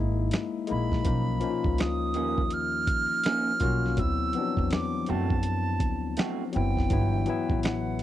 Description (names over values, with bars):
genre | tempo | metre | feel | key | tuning
R&B, neo-soul | 82 BPM | 4/4 | swing 62% on 16ths | unclear | A4 = 441 Hz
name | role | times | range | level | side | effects
barky tine electric piano | accompaniment | 0.0-8.0 s | E3 to F#4 | -30 LUFS | left 7 dB | overdrive
upright bass | bass | 0.0-8.0 s | F#1 to F#2 | -29 LUFS | right 1 dB | none
dusty soul sampler-style drum kit | drums | 0.3-8.0 s | finger snaps, hi-hat, kick drum, snare drum | -29 LUFS | right 1 dB | none
silver concert flute | melody | 0.7-8.0 s | F#5 to F6 | -31 LUFS | right 4 dB | slapback echo
electric guitar through a small old amp | second line | 1.8-7.7 s | D#3 to F#4 | -34 LUFS | right 6 dB | spring reverb, slapback echo
room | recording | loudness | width
little or no reverb | dry, close 1970s-style studio recording | -25 LUFS | side -12 dB against mid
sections
0.0-8.0 A section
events
none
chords
0.0 F#9 (rootless); 1.1 Bmaj9; 4.0 D7; 6.9 Gmaj13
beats
0.32 | 1.05 1.79 2.52 3.25 | 3.98 4.71 5.44 6.18 | 6.91 7.64